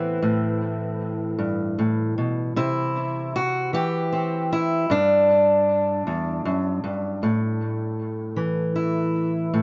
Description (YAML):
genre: folk, solo fingerstyle acoustic guitar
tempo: 52 BPM (dotted quarters)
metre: 6/8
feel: rubato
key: unclear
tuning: A4 = 440 Hz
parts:
  - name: fingerpicked steel-string acoustic guitar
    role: solo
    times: 0.0-9.6 s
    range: E2 to G4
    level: -23 LUFS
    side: equal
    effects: tape echo
room: light reverb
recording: nothing above 7.5 kHz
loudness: -23 LUFS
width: mono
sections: 0.0-2.6 A section; 2.6-9.6 B section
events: none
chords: 0.0 Amadd9; 2.6 C; 4.9 G5; 7.2 A5